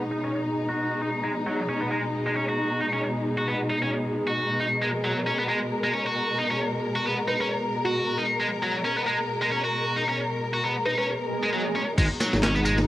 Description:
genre	breakbeat, breaks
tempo	134 BPM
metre	4/4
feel	swing 56% on 16ths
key	G# minor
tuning	A4 = 438 Hz
part	warm studio string section	sustained chords	0.0-12.9 s	B2 to A#4	-27 LUFS	left 1 dB	vintage 12-bit sampler grit, sidechain pumping
part	heavy high-gain guitar	riff	0.1-12.7 s	F#3 to F#4	-27 LUFS	equal	distortion, vintage 12-bit sampler grit, low-pass filter, analog delay
part	thumb-piano-like synth pluck	melody	7.3-11.0 s	F#4 to B4	-30 LUFS	right 1 dB	chorus, AM radio sound, cassette tape, analog delay
part	swell	sound effects	11.2-12.0 s	none	-30 LUFS	right 2 dB	none
part	dark detuned saw bass	bass	12.0-12.9 s	G#1	-25 LUFS	equal	tube saturation
part	breakbeat sampler-style drum kit	drums	12.0-12.9 s	crash cymbal, hi-hat, kick drum, snare drum	-25 LUFS	equal	studio ambience, cassette tape
part	electronic tambourine and handclaps	drums	12.0-12.9 s	none	-33 LUFS	equal	low-pass filter on snare, studio ambience, cassette tape, low-pass filter on perc
room	wet studio reverb, RT60 0.5 s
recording	home recording on cassette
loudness	-23 LUFS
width	side -14 dB against mid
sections	0.0-12.0 A section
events	swell 11.2-12.0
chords	0.0 G#m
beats	0.34 0.79 | 1.24 1.68 2.13 2.58 | 3.03 3.47 3.92 4.37 | 4.82 5.26 5.71 6.16 | 6.61 7.06 7.50 7.95 | 8.40 8.85 9.29 9.74 | 10.19 10.64 11.09 11.53 | 11.98 12.43

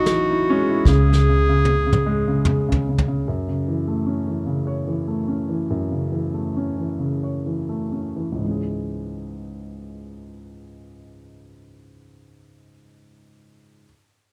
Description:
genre	acoustic folk-pop ballad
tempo	61-76 BPM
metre	3/4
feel	straight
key	C# minor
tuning	A4 = 440 Hz
part	warm baby grand piano	melody	0.0-13.9 s	C#2 to C#5	-25 LUFS	equal	none
part	warm clarinet	second line	0.0-2.9 s	F#4 to G#4	-24 LUFS	equal	none
part	vintage muted fingered electric bass	bass	0.0-3.2 s	A1 to C#2	-23 LUFS	equal	none
part	soft brush drum kit	drums	0.1-3.2 s	hi-hat, kick drum, snare drum, toms	-25 LUFS	equal	none
room	small room reverb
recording	none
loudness	-22 LUFS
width	mono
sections	0.0-3.3 A section; 3.3-8.4 B section; 8.4-11.3 C section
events	drum fill 0.9-3.3; slowing down 3.3-8.4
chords	0.0 A6; 0.9 C#5; 3.3 F#m7; 8.4 C#m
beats	0.07 | 0.86 1.65 2.45 | 3.25 4.06 4.87 | 5.70 6.56 7.46 | 8.41 9.38 10.36

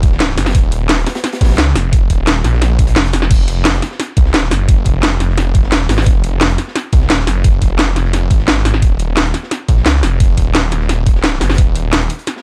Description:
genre	dark technical drum and bass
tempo	174 BPM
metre	4/4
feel	straight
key	F phrygian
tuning	A4 = 440 Hz
part	snarling distorted saw bass	bass	0.0-12.1 s	Eb1 to Db2	-17 LUFS	equal	tube saturation, sidechain pumping
part	crunchy breakbeat drum kit	drums	0.0-12.4 s	hi-hat, snare drum	-30 LUFS	equal	none
part	drum and bass drum kit	drums	0.0-12.3 s	crash cymbal, hi-hat, snare drum	-18 LUFS	equal	none
part	electronic kick drum	drums	0.0-11.7 s	none	-14 LUFS	equal	none
room	little or no reverb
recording	none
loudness	-13 LUFS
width	mono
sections	0.0-12.4 A section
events	none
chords	none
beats	0.20 | 0.55 0.89 1.24 1.58 | 1.93 2.27 2.62 2.96 | 3.31 3.65 4.00 4.34 | 4.69 5.03 5.38 5.72 | 6.07 6.41 6.75 7.10 | 7.45 7.79 8.13 8.48 | 8.82 9.17 9.51 9.86 | 10.20 10.55 10.89 11.24 | 11.58 11.93 12.27

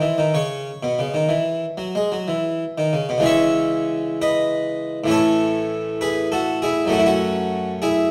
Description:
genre	classical, baroque-style suite movement for harpsichord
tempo	60-68 BPM (dotted quarters)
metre	12/8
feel	rubato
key	C# minor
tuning	A4 = 439 Hz
part	harpsichord	solo	0.0-8.1 s	F#2 to E5	-21 LUFS	equal	none
room	wet recital hall reverb, RT60 1.2 s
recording	dark, warm production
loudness	-21 LUFS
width	mono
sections	0.0-3.2 A section; 3.2-8.1 B section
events	none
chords	0.0 C#m; 5.1 A; 6.9 F#m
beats	0.35 1.31 2.27 | 3.25 4.19 5.10 6.00 | 6.92 7.82

